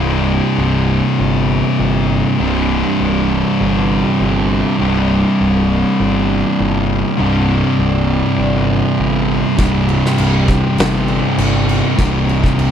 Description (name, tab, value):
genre	stoner and doom metal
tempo	100 BPM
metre	4/4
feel	straight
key	C minor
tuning	A4 = 440 Hz
part	overtone-sweeping drone	sustained chords	1.6-12.7 s	C3 to Eb4	-26 LUFS	right 2 dB	chorus, built-in reverb, phaser
part	thick fuzz guitar	riff	0.0-12.7 s	C2 to C3	-17 LUFS	left 8 dB	distortion
part	thick fuzz guitar	riff	0.0-12.7 s	C2 to C3	-17 LUFS	right 8 dB	distortion
part	fuzz picked electric bass	bass	0.0-12.7 s	C1 to G1	-20 LUFS	equal	overdrive
part	oversized low-tuned drum kit	drums	9.6-12.7 s	crash cymbal, kick drum, snare drum	-19 LUFS	equal	none
room	little or no reverb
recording	none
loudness	-12 LUFS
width	side -8 dB against mid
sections	0.0-12.7 A section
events	none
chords	0.0 Cm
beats	0.57 1.18 1.78 | 2.38 2.98 3.59 4.19 | 4.79 5.39 5.99 6.59 | 7.19 7.79 8.39 8.99 | 9.59 10.19 10.79 11.39 | 11.99 12.59